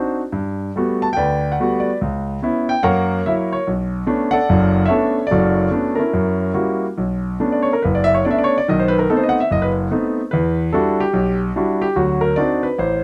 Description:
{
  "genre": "solo jazz",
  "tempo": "145 BPM",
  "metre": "4/4",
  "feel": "swing 66% on 8ths, rubato",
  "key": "B minor",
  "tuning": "A4 = 441 Hz",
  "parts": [
    { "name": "warm concert grand piano", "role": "solo", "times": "0.0-13.0 s", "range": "F#1 to A5", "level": "-18 LUFS", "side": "equal", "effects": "none" }
  ],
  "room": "light reverb",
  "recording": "close, detailed microphones",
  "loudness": "-18 LUFS",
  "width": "mono",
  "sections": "0.0-7.0 A section; 7.0-13.0 B section",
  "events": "grand piano solo 7.0-13.0",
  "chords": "0.3 Gmaj9; 2.0 C#m7b5; 2.8 F#7; 3.7 Bm9; 6.1 F#7b9; 7.0 Bm9; 8.7 B7b9; 10.3 Em9; 12.0 D7b9"
}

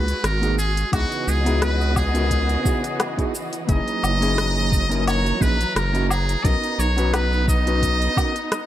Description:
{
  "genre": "sunset chillout",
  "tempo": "87 BPM",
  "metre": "4/4",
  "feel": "swing 54% on 16ths",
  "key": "B major",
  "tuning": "A4 = 440 Hz",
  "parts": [
    { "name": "trumpet with metal mute", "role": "melody", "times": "0.0-8.7 s", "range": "F#4 to D#5", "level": "-24 LUFS", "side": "equal", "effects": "ping-pong delay" },
    { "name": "hollow-body jazz guitar", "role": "accompaniment", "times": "0.0-8.3 s", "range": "A#3 to B4", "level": "-27 LUFS", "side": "moving between left 4 dB and right 5 dB", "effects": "auto-pan, ping-pong delay" },
    { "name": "warm symphonic string section", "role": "sustained chords", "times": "0.0-8.7 s", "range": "C#3 to A#5", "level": "-29 LUFS", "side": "equal", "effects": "vintage 12-bit sampler grit" },
    { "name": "round analog bass", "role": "bass", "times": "0.0-8.1 s", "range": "F#1 to C#2", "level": "-22 LUFS", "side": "equal", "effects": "none" },
    { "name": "smooth R&B drum kit", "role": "drums", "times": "0.1-8.7 s", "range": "cabasa, hi-hat, rim click, woodblock", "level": "-27 LUFS", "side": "left 1 dB", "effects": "none" },
    { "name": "electronic kick drum", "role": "drums", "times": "0.9-8.3 s", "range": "none", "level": "-23 LUFS", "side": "equal", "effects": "none" }
  ],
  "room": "small room reverb",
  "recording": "none",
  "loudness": "-18 LUFS",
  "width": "side -12 dB against mid",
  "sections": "0.0-8.7 A section",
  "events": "none",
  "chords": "0.0 G#m7; 0.9 C#m11; 3.7 F#13; 6.4 Bmaj7"
}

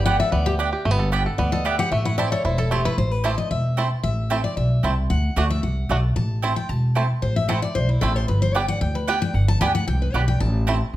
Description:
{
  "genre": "bluegrass",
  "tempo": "226 BPM",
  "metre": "4/4",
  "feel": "straight",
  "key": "A dorian",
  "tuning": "A4 = 440 Hz",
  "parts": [
    { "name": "bluegrass banjo", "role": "melody", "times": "0.0-10.7 s", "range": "A3 to A4", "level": "-28 LUFS", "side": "right 2 dB", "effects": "none" },
    { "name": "picked steel-string acoustic guitar", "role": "accompaniment", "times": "0.0-10.9 s", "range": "E4 to A5", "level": "-25 LUFS", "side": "left 3 dB", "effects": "none" },
    { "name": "upright bass", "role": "bass", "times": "0.0-11.0 s", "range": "E1 to D2", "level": "-22 LUFS", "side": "equal", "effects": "none" },
    { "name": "mandolin", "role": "stabs", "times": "0.1-10.8 s", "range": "A3 to A5", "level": "-26 LUFS", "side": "right 4 dB", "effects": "none" }
  ],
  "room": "light reverb",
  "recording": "none",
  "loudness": "-19 LUFS",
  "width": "side -14 dB against mid",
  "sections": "0.0-3.0 A section; 3.0-11.0 A section",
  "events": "steel-string acoustic guitar solo 0.0-11.0",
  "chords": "0.0 G; 1.9 Am; 5.1 D; 6.2 Am; 8.3 G; 10.4 Am"
}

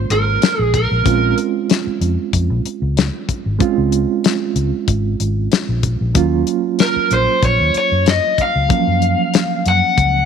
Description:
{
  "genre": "straight-eighth soul blues",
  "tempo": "94 BPM",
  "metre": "4/4",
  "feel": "swing 54% on 16ths",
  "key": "Bb minor",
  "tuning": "A4 = 440 Hz",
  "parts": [
    { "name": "bright reed electric piano", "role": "accompaniment", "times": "0.0-10.3 s", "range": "F3 to F4", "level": "-20 LUFS", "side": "right 12 dB", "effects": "overdrive, fast tremolo" },
    { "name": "vintage muted fingered electric bass", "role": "bass", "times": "0.0-10.2 s", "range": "Ab1 to Gb2", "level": "-18 LUFS", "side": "left 1 dB", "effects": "none" },
    { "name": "overdriven electric guitar", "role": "melody", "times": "0.1-1.3, 6.8-10.3 s", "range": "Bb4 to Gb5", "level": "-16 LUFS", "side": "left 1 dB", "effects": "none" },
    { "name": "damped 70s drum kit", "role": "drums", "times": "0.1-10.1 s", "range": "hi-hat, kick drum, snare drum", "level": "-18 LUFS", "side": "left 6 dB", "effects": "none" }
  ],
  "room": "light reverb, small room ambience",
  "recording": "1960s-style stereo with parts hard left and right",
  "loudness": "-14 LUFS",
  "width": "side -7 dB against mid",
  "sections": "0.0-10.3 A section",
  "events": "none",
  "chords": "0.0 Bbm7; 6.2 Ebm7 (rootless)"
}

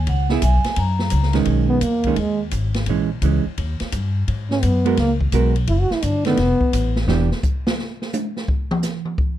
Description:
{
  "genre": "jazz, small-group swing and bop",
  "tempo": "171 BPM",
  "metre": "4/4",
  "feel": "swing 65% on 8ths",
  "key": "B major",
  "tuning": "A4 = 440 Hz",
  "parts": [
    { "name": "upright bass", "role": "bass", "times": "0.0-7.3 s", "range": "E1 to G#2", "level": "-20 LUFS", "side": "left 1 dB", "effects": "none" },
    { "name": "vibraphone with medium hard mallets", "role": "melody", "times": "0.1-1.3 s", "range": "E5 to A#5", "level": "-25 LUFS", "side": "right 2 dB", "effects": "auto-pan" },
    { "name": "open jazz drum kit", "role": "drums", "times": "0.1-9.3 s", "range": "hi-hat, kick drum, ride cymbal, snare drum, toms", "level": "-25 LUFS", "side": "equal", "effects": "none" },
    { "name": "hollow-body jazz guitar", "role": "accompaniment", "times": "0.3-7.3 s", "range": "D#3 to A#4", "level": "-21 LUFS", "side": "right 8 dB", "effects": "none" },
    { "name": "mellow trombone", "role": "second line", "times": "1.7-2.4, 4.5-7.0 s", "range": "G#3 to F#4", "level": "-20 LUFS", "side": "equal", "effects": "none" }
  ],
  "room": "light reverb",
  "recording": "dark, warm production",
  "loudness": "-17 LUFS",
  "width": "side -12 dB against mid",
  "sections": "0.0-1.5 A section; 1.5-9.4 B section",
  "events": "trombone solo 1.5-9.4; drum solo 7.1-9.4",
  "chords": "0.1 C#m7; 0.8 F#; 1.5 B69; 2.9 A#m7b5; 3.6 D#; 4.3 G#m9; 5.7 Gmaj7sus2/F#; 6.4 F; 7.1 Em7; 8.5 N.C."
}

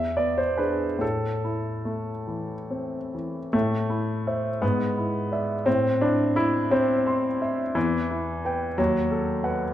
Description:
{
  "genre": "classical, romantic character piece for solo piano",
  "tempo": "46-62 BPM (dotted quarters)",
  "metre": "6/8",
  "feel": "rubato",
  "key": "A minor",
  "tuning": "A4 = 442 Hz",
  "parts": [
    { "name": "clear grand piano", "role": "solo", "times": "0.0-9.7 s", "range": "D#2 to C6", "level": "-23 LUFS", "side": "equal", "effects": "none" }
  ],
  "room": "wet recital hall reverb, RT60 1.5 s",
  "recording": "dark, warm production",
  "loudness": "-23 LUFS",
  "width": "side -12 dB against mid",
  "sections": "0.0-3.5 A section; 3.5-9.7 B section",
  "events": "none",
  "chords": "0.0 E7; 1.0 Am; 4.6 E7/G#; 5.7 Am; 7.8 Em; 8.8 B7/D#"
}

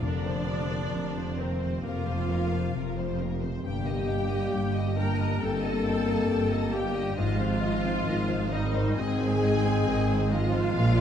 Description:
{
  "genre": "cinematic, emotional film score for orchestra",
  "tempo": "67 BPM",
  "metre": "4/4",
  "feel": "rubato",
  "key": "unclear",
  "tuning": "A4 = 440 Hz",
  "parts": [
    { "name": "rich symphonic violin section", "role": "melody", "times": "0.0-11.0 s", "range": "Bb4 to G5", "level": "-39 LUFS", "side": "left 5 dB", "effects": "none" },
    { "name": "clear clarinet", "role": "second line", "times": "0.0-11.0 s", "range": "Eb3 to D4", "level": "-36 LUFS", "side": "left 1 dB", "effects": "none" },
    { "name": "rich symphonic violin section", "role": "second line", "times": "0.0-11.0 s", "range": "C5 to Bb5", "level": "-39 LUFS", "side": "left 1 dB", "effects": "none" },
    { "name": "dark concert grand piano", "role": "accompaniment", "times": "0.0-11.0 s", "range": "F2 to Eb5", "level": "-35 LUFS", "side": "left 1 dB", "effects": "none" },
    { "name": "rich symphonic viola section", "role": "accompaniment", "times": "0.0-11.0 s", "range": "C4 to Bb4", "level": "-33 LUFS", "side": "equal", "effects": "none" },
    { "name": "mellow French horn section", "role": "sustained chords", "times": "0.0-11.0 s", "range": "C3 to Bb3", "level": "-33 LUFS", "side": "left 4 dB", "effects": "none" },
    { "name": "concert harp", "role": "arpeggios", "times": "0.0-11.0 s", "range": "F2 to Eb5", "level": "-38 LUFS", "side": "left 8 dB", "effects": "none" },
    { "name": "rich symphonic double bass section", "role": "bass", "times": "0.0-11.0 s", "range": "F1 to Bb1", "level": "-32 LUFS", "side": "right 3 dB", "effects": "none" },
    { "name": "warm symphonic cello section", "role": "bass", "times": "0.0-11.0 s", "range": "F2 to Bb2", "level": "-32 LUFS", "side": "right 2 dB", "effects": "none" },
    { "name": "timpani", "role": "percussion", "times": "0.0-1.3 s", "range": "F2", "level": "-37 LUFS", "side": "left 3 dB", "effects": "none" }
  ],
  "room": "moderate scoring stage reverb, RT60 1.8 s",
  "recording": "dark, warm production, faint mains hum",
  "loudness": "-25 LUFS",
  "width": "side -9 dB against mid",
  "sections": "0.0-11.0 A section",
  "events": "none",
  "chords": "0.0 Fsus4; 3.6 Eb/G; 7.2 Ab"
}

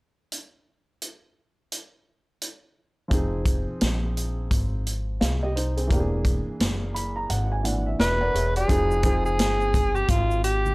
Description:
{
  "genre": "hip hop, jazz-hop",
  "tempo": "86 BPM",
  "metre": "4/4",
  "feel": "swing 62% on 16ths",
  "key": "unclear",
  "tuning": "A4 = 437 Hz",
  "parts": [
    { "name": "vintage drum kit", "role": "drums", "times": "0.3-10.6 s", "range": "hi-hat, kick drum, snare drum", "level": "-25 LUFS", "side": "equal", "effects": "none" },
    { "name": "dark upright piano", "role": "accompaniment", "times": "3.1-10.1 s", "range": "A#2 to B5", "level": "-30 LUFS", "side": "right 1 dB", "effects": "none" },
    { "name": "upright bass", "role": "bass", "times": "3.1-10.7 s", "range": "E1 to C2", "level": "-26 LUFS", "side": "equal", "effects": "none" },
    { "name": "breathy alto saxophone", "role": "melody", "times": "8.0-10.7 s", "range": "F4 to B4", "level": "-24 LUFS", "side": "equal", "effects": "none" },
    { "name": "tube shaker and congas", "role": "percussion", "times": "8.7-10.7 s", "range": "none", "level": "-36 LUFS", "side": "equal", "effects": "none" }
  ],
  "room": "studio reverb",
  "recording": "dry, gritty hardware recording",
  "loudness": "-22 LUFS",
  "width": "side -25 dB against mid",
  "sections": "0.3-3.1 A section; 3.1-8.7 B section; 8.7-10.7 C section",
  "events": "upright piano fill 6.6-8.7; kick muted 7.3-8.7",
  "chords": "0.3 N.C.; 3.1 Fm7; 5.9 E7#11; 8.7 Fm7"
}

